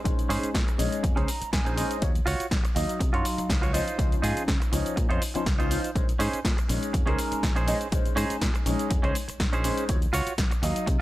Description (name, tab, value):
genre	filtered disco house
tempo	122 BPM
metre	4/4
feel	swing 54% on 16ths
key	Bb minor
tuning	A4 = 439 Hz
part	warm baby grand piano	accompaniment	0.0-11.0 s	F3 to C6	-31 LUFS	left 1 dB	phaser, sidechain pumping, low-pass filter
part	modern bright fingered electric bass	bass	0.1-11.0 s	Bb1 to Db3	-31 LUFS	equal	sidechain pumping, low-pass filter
part	electronic kick drum	drums	0.1-11.0 s	none	-27 LUFS	equal	none
part	punchy analog drum machine	drums	0.1-11.0 s	cabasa, hi-hat, snare drum	-33 LUFS	equal	overdrive, sidechain pumping on hats, sidechain pumping on cymbals, sidechain pumping on perc
part	tambourine	percussion	0.1-11.0 s	none	barely audible	none	none
part	direct-recorded clean electric guitar	riff	0.3-10.9 s	Db4 to Bb5	-31 LUFS	right 3 dB	sidechain pumping, low-pass filter
room	digital ambience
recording	dry, gritty hardware recording, faint mains hum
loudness	-23 LUFS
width	side -16 dB against mid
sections	0.0-11.0 A section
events	clean electric guitar fill 1.0-2.0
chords	0.0 Bbm11; 2.0 Ebm9; 3.7 Dbmaj9; 6.0 Bbm11; 9.9 Ebm9